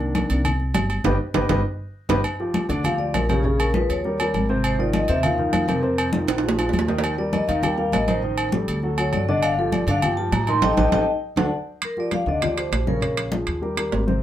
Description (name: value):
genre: Afro-Cuban jazz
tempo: 200 BPM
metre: 4/4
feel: straight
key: G minor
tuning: A4 = 440 Hz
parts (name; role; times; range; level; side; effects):
- dark baby grand piano; accompaniment; 0.0-14.2 s; C3 to D#5; -25 LUFS; equal; none
- upright bass; bass; 0.0-14.2 s; G1 to A2; -26 LUFS; equal; none
- congas; percussion; 0.0-14.2 s; none; -28 LUFS; left 1 dB; none
- agogo bells and timbales; percussion; 0.1-14.1 s; none; -26 LUFS; right 3 dB; none
- vibraphone with medium hard mallets; melody; 2.8-13.2 s; G4 to C6; -24 LUFS; left 1 dB; slapback echo
room: wet small room reverb, RT60 0.5 s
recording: heard from further back in the room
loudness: -19 LUFS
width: side -12 dB against mid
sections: 0.0-2.2 A section; 2.2-11.8 A section; 11.8-14.2 B section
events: grand piano solo 0.0-2.2; drum fill 1.1-2.2, 6.3-7.0, 11.1-11.8; band accent 1.1-2.2, 10.6-11.8; vibraphone solo 2.2-11.8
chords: 0.0 Cm9; 1.1 Gaug; 2.2 Gm7; 3.4 Bbm7; 4.0 Eb7; 4.6 Ab6; 5.8 F5; 6.4 Bb5; 7.0 Eb; 8.2 Am7b5; 8.8 D; 9.4 G5; 10.6 Gsus2/A; 11.2 D; 11.8 Gm7; 13.0 Bbm7; 13.6 Eb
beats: 0.15 0.45 0.75 | 1.05 1.35 1.65 1.95 | 2.25 2.55 2.85 3.15 | 3.45 3.75 4.04 4.34 | 4.64 4.94 5.24 5.54 | 5.84 6.14 6.44 6.74 | 7.04 7.34 7.63 7.93 | 8.23 8.53 8.83 9.13 | 9.43 9.73 10.03 10.33 | 10.63 10.93 11.23 11.53 | 11.83 12.13 12.43 12.73 | 13.03 13.33 13.63 13.93